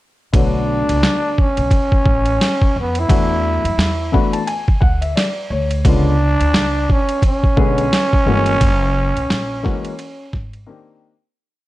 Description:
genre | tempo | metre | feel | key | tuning
hip hop, jazz-hop | 87 BPM | 4/4 | swing 59% on 16ths | B dorian | A4 = 438 Hz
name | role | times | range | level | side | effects
dark grand piano | accompaniment | 0.3-11.1 s | D3 to B5 | -21 LUFS | left 4 dB | plate reverb
upright bass | bass | 0.3-10.6 s | F#1 to F#2 | -20 LUFS | equal | none
boom bap sampler-style drum kit | drums | 0.3-10.7 s | hi-hat, kick drum, ride cymbal, snare drum | -17 LUFS | equal | overdrive, vintage 12-bit sampler grit
growling trombone | melody | 0.4-10.7 s | B3 to E4 | -19 LUFS | right 1 dB | slapback echo, plate reverb
room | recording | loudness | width
light reverb | dark, warm production | -14 LUFS | side -17 dB against mid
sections
0.3-11.4 A section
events
grand piano fill 3.8-5.9; fade-out 8.6-11.4; break 10.7-11.4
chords
0.3 Bm9; 3.1 E9sus4; 5.9 C#7(no3); 8.6 F#9; 10.7 Cm9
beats
| 0.34 1.03 1.72 2.41 | 3.10 3.79 4.48 5.17 | 5.86 6.55 7.24 7.92 | 8.62 9.30 9.99 10.68

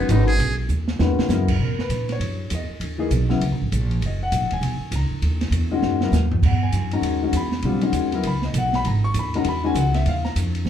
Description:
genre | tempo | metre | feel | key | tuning
modal jazz | 199 BPM | 4/4 | swing 62% on 8ths | B major | A4 = 440 Hz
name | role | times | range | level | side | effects
trumpet with metal mute | melody | 0.0-0.6 s | B3 to G#4 | -26 LUFS | right 2 dB | plate reverb
warm grand piano | accompaniment | 0.0-10.3 s | Db3 to C#6 | -24 LUFS | left 4 dB | none
upright bass | bass | 0.0-10.7 s | D#1 to B2 | -22 LUFS | right 1 dB | none
open jazz drum kit | drums | 0.1-10.7 s | crash cymbal, hi-hat, kick drum, ride cymbal, snare drum, toms | -27 LUFS | right 2 dB | none
room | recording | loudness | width
wet club reverb, RT60 0.8 s | heard from further back in the room | -19 LUFS | side -9 dB against mid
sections
0.0-1.6 A section; 1.6-10.7 A section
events
muted trumpet solo 0.0-1.6; drum fill 0.7-1.3, 5.8-6.4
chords
0.0 Emaj9; 1.6 Bmaj9; 6.4 Emaj9; 10.1 N.C.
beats
0.10 | 0.40 0.70 1.00 1.30 | 1.60 1.90 2.21 2.51 | 2.81 3.11 3.41 3.71 | 4.01 4.32 4.62 4.92 | 5.22 5.52 5.82 6.12 | 6.43 6.73 7.03 7.33 | 7.63 7.94 8.24 8.54 | 8.85 9.15 9.45 9.75 | 10.06 10.36 10.66

